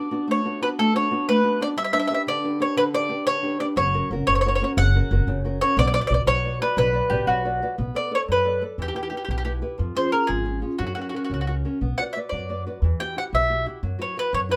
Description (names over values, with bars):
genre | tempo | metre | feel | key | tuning
italian folk, Italian serenade | 120 BPM (dotted quarters) | 6/8 | straight | B minor | A4 = 438 Hz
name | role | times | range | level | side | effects
bowl-back mandolin | melody | 0.0-14.6 s | F#4 to G5 | -25 LUFS | equal | none
nylon-string guitar | accompaniment | 0.0-14.6 s | B2 to D5 | -30 LUFS | equal | none
upright bass | bass | 3.8-14.6 s | F#1 to F#2 | -27 LUFS | equal | none
mandolin | second line | 7.1-7.7 s | F#4 to G4 | -26 LUFS | equal | none
room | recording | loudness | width
moderate studio ambience, RT60 0.5 s | none | -23 LUFS | mono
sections
0.0-7.8 A section; 7.8-14.6 B section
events
none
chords
0.0 D6; 1.8 G; 3.8 F#; 5.8 Bm; 7.8 Bm7; 8.8 Em; 9.8 C#/E#; 10.8 F#; 11.8 Bm; 12.8 Emadd9; 13.8 F#7sus4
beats
0.29 | 0.79 1.28 | 1.77 2.27 | 2.77 3.27 | 3.78 4.28 | 4.78 5.28 | 5.77 6.27 | 6.77 7.28 | 7.78 8.29 | 8.79 9.30 | 9.79 10.29 | 10.80 11.30 | 11.81 12.32 | 12.82 13.32 | 13.83 14.33